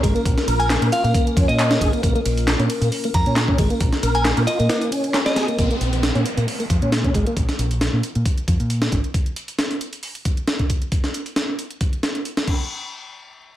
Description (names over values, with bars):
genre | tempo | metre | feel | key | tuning
breakbeat, breaks | 135 BPM | 4/4 | swing 53% on 16ths | Bb minor | A4 = 440 Hz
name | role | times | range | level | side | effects
dark analog pad | sustained chords | 0.0-5.6 s | Bb3 to Bb4 | -29 LUFS | left 2 dB | chorus, sidechain pumping
mellow tonewheel organ | riff | 0.0-7.4 s | Ab3 to Bb4 | -24 LUFS | equal | chorus vibrato, fast rotary speaker, tube saturation, low-pass filter, ping-pong delay
deep dub fingered electric bass | bass | 0.0-9.0 s | Ab1 to Bb2 | -21 LUFS | equal | none
breakbeat sampler-style drum kit | drums | 0.0-12.6 s | crash cymbal, hi-hat, kick drum, snare drum | -21 LUFS | equal | none
house drum kit | drums | 0.0-12.5 s | handclaps, hi-hat, ride cymbal | -30 LUFS | equal | overdrive
glassy synth bell | melody | 0.6-5.6 s | Eb5 to Bb5 | -25 LUFS | equal | chorus, phaser, small speaker sound, ping-pong delay
downlifter | sound effects | 5.6-9.1 s | none | -30 LUFS | right 2 dB | none
room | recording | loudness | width
light reverb, digital ambience | vinyl crackle | -18 LUFS | side -13 dB against mid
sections
0.0-5.6 A section; 5.6-12.7 B section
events
drop 0.0-5.6; filter sweep on tonewheel organ 5.6-7.4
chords
0.0 Bbm; 5.6 N.C.